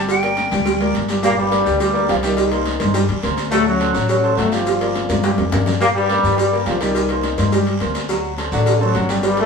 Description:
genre	latin, salsa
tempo	210 BPM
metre	4/4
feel	straight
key	G minor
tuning	A4 = 440 Hz
part	clear grand piano	accompaniment	0.0-9.5 s	F#3 to G5	-22 LUFS	right 1 dB	none
part	upright bass	bass	0.0-9.5 s	G1 to G2	-23 LUFS	left 1 dB	none
part	bright silver concert flute	melody	0.1-0.9 s	G5	-21 LUFS	equal	none
part	congas	percussion	0.1-9.5 s	none	-26 LUFS	left 2 dB	none
part	cowbell and bongos	percussion	0.1-9.5 s	none	-23 LUFS	right 2 dB	none
part	guiro	percussion	0.1-9.5 s	none	-33 LUFS	right 4 dB	none
part	maracas	percussion	0.1-9.5 s	none	-35 LUFS	left 2 dB	none
part	warm trombone section	melody	1.2-9.5 s	F#2 to F4	-18 LUFS	left 2 dB	none
room	wet studio reverb, RT60 0.7 s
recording	band playing live in one room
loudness	-15 LUFS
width	side -5 dB against mid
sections	0.0-1.2 A section; 1.2-9.5 B section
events	drum fill 0.7-1.2, 5.1-5.8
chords	0.1 Gm; 2.4 Cm7; 3.5 D7; 4.7 Gm7; 6.9 Cm7; 8.1 D7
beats	| 0.09 0.37 0.66 0.94 | 1.23 1.51 1.80 2.09 | 2.37 2.66 2.94 3.23 | 3.52 3.80 4.09 4.38 | 4.66 4.95 5.23 5.52 | 5.81 6.09 6.38 6.66 | 6.95 7.24 7.52 7.81 | 8.09 8.38 8.66 8.95 | 9.23

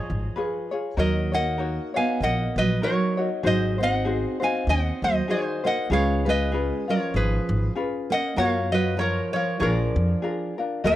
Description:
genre	Hawaiian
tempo	97 BPM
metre	4/4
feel	swing 57% on 8ths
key	unclear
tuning	A4 = 440 Hz
part	lap resonator guitar	melody	0.0-11.0 s	G#4 to G#5	-26 LUFS	equal	none
part	fingerpicked steel-string acoustic guitar	second line	0.0-11.0 s	D#3 to B#3	-28 LUFS	right 4 dB	none
part	ukulele	accompaniment	0.0-11.0 s	C#4 to F5	-28 LUFS	left 4 dB	none
part	upright bass	bass	0.1-11.0 s	G#1 to F#2	-25 LUFS	equal	none
room	small room ambience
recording	dry, close 1970s-style studio recording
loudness	-22 LUFS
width	side -14 dB against mid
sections	0.0-10.8 A section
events	none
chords	0.0 C#7; 1.0 D#m7; 3.4 G#7; 5.9 C#7; 8.4 F#maj7; 9.6 A#7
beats	0.35 | 0.97 1.59 2.20 2.82 | 3.44 4.05 4.67 5.29 | 5.90 6.52 7.13 7.75 | 8.37 8.99 9.60 10.22 | 10.84

